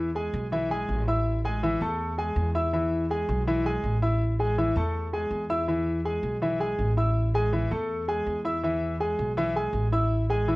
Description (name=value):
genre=latin, salsa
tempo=163 BPM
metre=4/4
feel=straight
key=E major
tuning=A4 = 440 Hz
part: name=clear grand piano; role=accompaniment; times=0.0-10.6 s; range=E3 to E6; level=-26 LUFS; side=equal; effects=none
part: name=upright bass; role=bass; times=0.0-10.6 s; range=A1 to E2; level=-28 LUFS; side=equal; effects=none
room=light reverb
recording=worn, warbling old tape, cassette tape, warbly pitch drift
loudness=-24 LUFS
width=side -21 dB against mid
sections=0.0-10.6 A section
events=none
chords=0.0 E; 1.3 A5; 2.7 E; 4.2 A5; 5.7 E; 7.2 A5; 8.6 E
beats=0.15 0.52 0.89 | 1.26 1.63 2.00 2.37 | 2.73 3.10 3.47 3.84 | 4.21 4.58 4.95 5.32 | 5.68 6.05 6.42 6.79 | 7.16 7.53 7.90 8.27 | 8.63 9.01 9.37 9.74 | 10.11 10.48